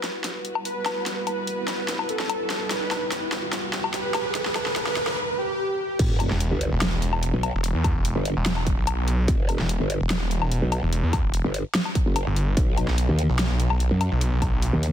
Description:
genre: heavy wobble dubstep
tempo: 146 BPM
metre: 4/4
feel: half-time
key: E minor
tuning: A4 = 437 Hz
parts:
  - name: dark chamber string section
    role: sustained chords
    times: 0.0-5.1 s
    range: G3 to B4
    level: -34 LUFS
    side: equal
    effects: sidechain pumping
  - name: dubstep drum kit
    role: drums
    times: 0.0-14.9 s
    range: crash cymbal, hi-hat, snare drum, woodblock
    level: -28 LUFS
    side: left 2 dB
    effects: high-pass filter on hats, high-pass filter on snare, high-pass filter on toms, high-pass filter on perc, high-pass filter on cymbals
  - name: riser and sub drop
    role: sound effects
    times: 0.8-7.6 s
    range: none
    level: -32 LUFS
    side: right 1 dB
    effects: none
  - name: soft supersaw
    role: melody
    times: 0.7-5.9 s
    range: G4 to B4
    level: -29 LUFS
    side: right 1 dB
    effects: ping-pong delay
  - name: growl bass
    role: bass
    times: 6.0-14.9 s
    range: E1 to F#2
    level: -24 LUFS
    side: equal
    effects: chorus, overdrive
  - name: electronic kick drum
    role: drums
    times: 6.0-14.5 s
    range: none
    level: -24 LUFS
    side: equal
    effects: distortion
  - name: snarling distorted saw bass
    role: bass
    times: 6.3-14.7 s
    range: E1 to E2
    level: -24 LUFS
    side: equal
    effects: distortion, overdrive
room: light reverb, digital ambience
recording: dense, heavily limited modern master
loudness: -22 LUFS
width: side -10 dB against mid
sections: 0.0-6.0 A section; 6.0-14.9 B section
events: build-up 0.0-6.0; drum fill 0.0-5.2; riser 0.8-5.2; drop 6.0-14.9; impact 6.0-7.6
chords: 0.0 Emadd9; 6.0 Em; 12.6 B

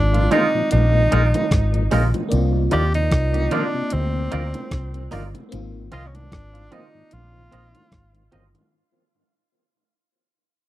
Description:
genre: lovers rock reggae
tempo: 75 BPM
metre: 4/4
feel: swing 57% on 16ths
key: unclear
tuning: A4 = 439 Hz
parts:
  - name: breathy tenor saxophone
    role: melody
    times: 0.0-8.3 s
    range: C4 to G4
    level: -24 LUFS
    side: right 1 dB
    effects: tape echo
  - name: FM electric piano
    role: accompaniment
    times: 0.0-8.7 s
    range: Eb3 to D5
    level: -29 LUFS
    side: left 2 dB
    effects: chorus, phaser
  - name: vintage muted fingered electric bass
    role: bass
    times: 0.0-8.5 s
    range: G1 to Eb2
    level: -20 LUFS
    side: equal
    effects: none
  - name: mellow tonewheel organ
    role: accompaniment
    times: 0.1-8.6 s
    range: Ab2 to Eb4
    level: -30 LUFS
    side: left 4 dB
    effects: overdrive, chorus vibrato, slow rotary speaker, tape echo
  - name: gated 80s digital drum machine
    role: drums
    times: 0.1-8.7 s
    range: hi-hat, kick drum, rim click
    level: -23 LUFS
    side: equal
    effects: none
  - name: bongos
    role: percussion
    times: 0.1-8.7 s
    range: none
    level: -30 LUFS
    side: right 4 dB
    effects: tape echo
  - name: twangy electric guitar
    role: stabs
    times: 0.3-8.4 s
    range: Ab3 to Eb5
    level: -24 LUFS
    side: right 4 dB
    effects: lush chorus
room: little or no reverb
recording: dry, close 1970s-style studio recording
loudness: -17 LUFS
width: side -15 dB against mid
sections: 0.0-8.7 A section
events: fade-out 0.0-8.7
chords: 0.0 Bb7sus4; 2.3 Cm11; 5.5 Ab69

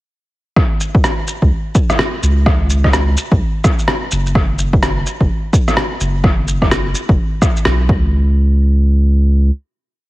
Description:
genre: future garage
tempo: 127 BPM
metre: 4/4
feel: swing 62% on 16ths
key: unclear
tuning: A4 = 441 Hz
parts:
  - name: electronic kick drum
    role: drums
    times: 0.6-8.0 s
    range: none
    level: -15 LUFS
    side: equal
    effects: overdrive
  - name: electronic rim click and shaker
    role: drums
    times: 0.6-7.8 s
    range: none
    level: -18 LUFS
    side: equal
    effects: none
  - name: warm sub bass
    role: bass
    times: 1.4-9.5 s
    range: F#1 to C#2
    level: -14 LUFS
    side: equal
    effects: none
room: little or no reverb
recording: heavily compressed radio sound, cassette tape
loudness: -12 LUFS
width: side -18 dB against mid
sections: 0.6-8.1 groove; 8.1-10.1 final hit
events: none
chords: none

